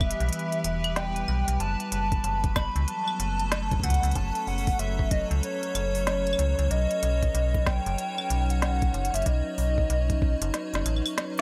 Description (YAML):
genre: IDM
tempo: 94 BPM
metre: 4/4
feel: swing 62% on 16ths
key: unclear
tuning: A4 = 440 Hz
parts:
  - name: warbly nostalgic lead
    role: melody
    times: 0.0-11.1 s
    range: C#5 to B5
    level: -33 LUFS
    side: equal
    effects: lush chorus, tape echo
  - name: icy glass pad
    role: sustained chords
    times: 0.0-11.4 s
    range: E3 to C#5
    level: -36 LUFS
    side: equal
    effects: chorus, built-in reverb
  - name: metallic FM bass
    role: bass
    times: 0.0-11.0 s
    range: E1 to C#2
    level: -30 LUFS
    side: equal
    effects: tube saturation
  - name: electronic kick drum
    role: drums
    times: 0.0-10.4 s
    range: none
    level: -30 LUFS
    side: equal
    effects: none
  - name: organic electronic drum kit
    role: drums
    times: 0.0-11.4 s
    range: claves, hi-hat, snare drum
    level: -34 LUFS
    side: equal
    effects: none
  - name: bubbling stepped-filter texture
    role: texture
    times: 0.0-11.4 s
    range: B4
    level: -46 LUFS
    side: equal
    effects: chorus, built-in reverb
room: light reverb, digital ambience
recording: none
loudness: -27 LUFS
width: mono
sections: 0.0-11.4 A section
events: break 10.5-11.4; drum fill 10.5-11.4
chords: 0.0 Em; 1.6 F#m; 6.7 Badd9